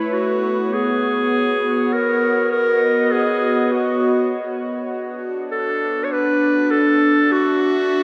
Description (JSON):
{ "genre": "ambient", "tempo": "50 BPM", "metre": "4/4", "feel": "straight", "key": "unclear", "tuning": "A4 = 440 Hz", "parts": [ { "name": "warm clarinet", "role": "melody", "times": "0.0-8.0 s", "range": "E4 to C#5", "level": "-21 LUFS", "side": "equal", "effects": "tape echo" }, { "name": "evolving wavetable pad", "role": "sustained chords", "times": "0.0-8.0 s", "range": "A3 to F#5", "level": "-22 LUFS", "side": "equal", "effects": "chorus, built-in reverb" } ], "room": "wet concert hall reverb, RT60 2.5 s", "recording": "none", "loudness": "-19 LUFS", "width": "mono", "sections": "0.1-8.0 A section", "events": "none", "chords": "0.1 B; 4.9 Dmaj7" }